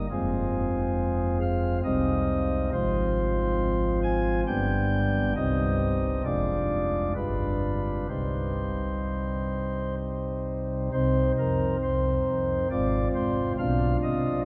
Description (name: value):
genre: classical, chorale-style piece for pipe organ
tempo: 62-70 BPM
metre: 3/4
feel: rubato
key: C minor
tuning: A4 = 440 Hz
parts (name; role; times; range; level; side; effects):
- pipe organ, flutes; solo; 0.0-14.4 s; F1 to Ab5; -27 LUFS; equal; none
room: wet cathedral reverb, RT60 5.4 s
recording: dark, warm production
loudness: -27 LUFS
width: mono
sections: 0.0-10.9 A section; 10.9-14.4 B section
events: none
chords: 0.1 Fm; 1.8 Cm; 2.7 Fm/Ab; 4.5 G; 5.4 Cm; 6.2 Ddim/F; 7.2 G7; 8.1 Cm; 12.7 Fm/Ab; 13.6 Bdim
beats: | 0.11 0.98 1.85 | 2.72 3.60 4.47 | 5.36 6.25 7.16 | 8.10 9.05 9.99 | 10.94 11.83 12.71 | 13.59